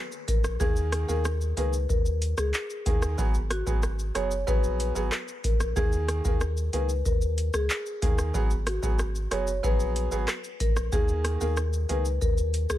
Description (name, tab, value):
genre	dancehall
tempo	93 BPM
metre	4/4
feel	straight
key	G# minor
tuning	A4 = 441 Hz
part	booming analog drum machine	drums	0.1-12.8 s	handclaps, hi-hat, kick drum, rim click, shaker	-28 LUFS	equal	none
part	marimba with medium mallets	melody	0.3-12.8 s	F#4 to C#5	-32 LUFS	left 4 dB	ping-pong delay
part	saturated sub bass	bass	0.3-12.8 s	F#1 to D#2	-28 LUFS	equal	none
part	clear baby grand piano	accompaniment	0.6-12.0 s	D#3 to G#4	-34 LUFS	right 5 dB	none
room	digital ambience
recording	none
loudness	-24 LUFS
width	side -13 dB against mid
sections	0.0-12.8 A section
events	none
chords	0.0 N.C.; 0.6 D#sus4; 3.2 G#m7; 5.8 D#sus4; 8.3 G#m7; 10.9 D#sus4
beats	| 0.60 1.25 1.89 2.54 | 3.18 3.83 4.47 5.12 | 5.76 6.41 7.05 7.70 | 8.35 8.99 9.64 10.28 | 10.93 11.57 12.22